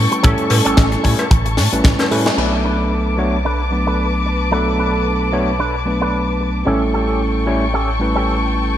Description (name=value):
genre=nu-disco, nu disco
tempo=112 BPM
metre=4/4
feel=swing 56% on 16ths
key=B minor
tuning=A4 = 440 Hz
part: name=overdriven tine electric piano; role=accompaniment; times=0.0-8.8 s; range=F#3 to C#5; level=-20 LUFS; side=equal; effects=sidechain pumping, ping-pong delay
part: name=muted studio string section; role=sustained chords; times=0.0-8.8 s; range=A4 to D6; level=-23 LUFS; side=left 3 dB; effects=sidechain pumping
part: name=chorused synth bass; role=bass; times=0.0-8.8 s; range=A1 to A2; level=-20 LUFS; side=equal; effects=none
part: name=electric guitar with an envelope filter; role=riff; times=0.1-8.6 s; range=C#4 to B4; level=-24 LUFS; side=right 2 dB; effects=analog chorus, low-pass filter, ping-pong delay
part: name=tight funk drum kit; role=drums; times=0.1-2.5 s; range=crash cymbal, hi-hat, rim click, snare drum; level=-21 LUFS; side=left 2 dB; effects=gated reverb
part: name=kick drum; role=drums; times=0.2-2.0 s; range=none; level=-14 LUFS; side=equal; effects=none
part: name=cowbell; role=percussion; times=0.5-2.1 s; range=none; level=-27 LUFS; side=left 2 dB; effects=none
room=moderate plate reverb, RT60 2.4 s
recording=bright 1980s-style digital production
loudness=-14 LUFS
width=side -11 dB against mid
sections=0.0-2.4 A section; 2.4-8.8 B section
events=filter sweep on clean electric guitar 0.0-2.4; drum fill 1.6-2.4; band accent 2.2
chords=0.0 A7; 2.4 Bm7; 6.7 A7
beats=| 0.24 0.78 1.31 1.85 | 2.38 2.92 3.46 3.99 | 4.53 5.06 5.60 6.13 | 6.67 7.21 7.74 8.28